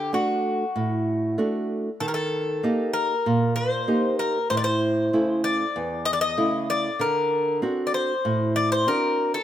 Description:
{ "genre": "greek folk, Greek bouzouki band", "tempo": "96 BPM", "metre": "4/4", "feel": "straight", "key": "unclear", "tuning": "A4 = 440 Hz", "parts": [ { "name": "Greek bouzouki", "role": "melody", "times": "0.0-9.4 s", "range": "F#4 to Eb5", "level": "-24 LUFS", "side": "left 2 dB", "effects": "none" }, { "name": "nylon-string guitar", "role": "accompaniment", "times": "0.0-9.4 s", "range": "E2 to G4", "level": "-24 LUFS", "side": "right 2 dB", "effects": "none" } ], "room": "moderate plate reverb, RT60 2.6 s", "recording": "none", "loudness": "-21 LUFS", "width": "side -11 dB against mid", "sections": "0.0-9.4 A section", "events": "none", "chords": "0.0 D; 2.0 Eb; 4.5 A; 7.0 D7" }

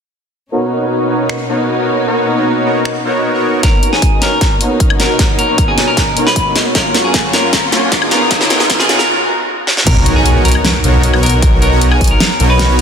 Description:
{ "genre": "future bass", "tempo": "154 BPM", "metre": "4/4", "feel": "half-time", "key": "B lydian", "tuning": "A4 = 440 Hz", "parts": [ { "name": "warm studio string section", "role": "sustained chords", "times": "0.5-9.8 s", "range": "F#2 to E#4", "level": "-22 LUFS", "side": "left 2 dB", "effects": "sidechain pumping" }, { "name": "soft supersaw", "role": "riff", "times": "0.5-12.8 s", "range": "A#3 to C#5", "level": "-16 LUFS", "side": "equal", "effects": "sidechain pumping, low-pass filter" }, { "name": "big-room dance drum kit", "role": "drums", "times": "1.3-12.8 s", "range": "crash cymbal, finger snaps, hi-hat, snare drum, woodblock", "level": "-16 LUFS", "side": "equal", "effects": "high-pass filter on snare, high-pass filter on hats, high-pass filter on perc, high-pass filter on cymbals" }, { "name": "clean electric guitar", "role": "melody", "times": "3.6-12.7 s", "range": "G#4 to B4", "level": "-17 LUFS", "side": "equal", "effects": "sidechain pumping, tape echo" }, { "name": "electronic kick drum", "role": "drums", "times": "3.6-12.1 s", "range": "none", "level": "-14 LUFS", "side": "equal", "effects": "none" }, { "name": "riser and impact", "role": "sound effects", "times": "5.2-11.4 s", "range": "none", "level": "-20 LUFS", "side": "equal", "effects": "none" }, { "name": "wide detuned saw bass", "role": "bass", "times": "9.9-12.8 s", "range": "B1", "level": "-12 LUFS", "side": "equal", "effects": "chorus, sidechain pumping" } ], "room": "moderate lush hall reverb, RT60 1.9 s", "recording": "dense, heavily limited modern master, high-pass filter", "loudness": "-10 LUFS", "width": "side -7 dB against mid", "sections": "0.5-3.6 A section; 3.6-9.9 B section; 9.9-12.8 C section", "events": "filter sweep on supersaw synth 0.5-3.6, 3.6-9.9; build-up 3.6-9.9; drum fill 3.6-9.1, 9.7; filter sweep 3.6-9.9; riser 5.2-9.1; break 9.1-9.9; drop 9.9-12.8; impact 9.9-11.4", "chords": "0.5 Bmaj9; 6.8 F#maj7; 8.1 C#9; 9.9 Bmaj9" }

